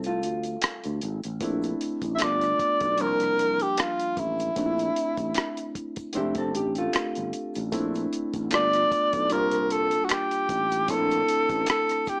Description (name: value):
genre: R&B, neo-soul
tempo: 76 BPM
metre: 4/4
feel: swing 55% on 16ths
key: unclear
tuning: A4 = 442 Hz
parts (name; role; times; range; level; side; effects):
- hollow-body jazz guitar; second line; 0.0-1.2, 6.2-7.7 s; A3 to C5; -33 LUFS; equal; none
- barky reed electric piano; accompaniment; 0.0-12.2 s; F3 to E5; -33 LUFS; equal; none
- sustaining fretless electric bass; bass; 0.0-11.6 s; F1 to D2; -34 LUFS; equal; lush chorus
- cloth-damped thuddy drum kit; drums; 0.0-12.2 s; hi-hat, kick drum, rim click; -33 LUFS; equal; none
- egg shaker and finger snaps; percussion; 0.0-12.2 s; none; -42 LUFS; equal; none
- breathy tenor saxophone; melody; 2.1-12.2 s; E4 to E5; -26 LUFS; equal; none
room: light reverb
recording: small speaker sound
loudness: -26 LUFS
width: mono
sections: 0.0-1.4 A section; 1.4-12.2 B section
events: break 0.0-1.4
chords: 0.0 Dm11; 1.4 Bbmaj9#11; 2.2 G7; 3.0 C7sus4; 4.6 Bbmaj9#11; 6.1 F69; 7.7 Bbmaj9#11; 8.5 G7; 9.3 C7sus4; 10.9 Bbmaj9#11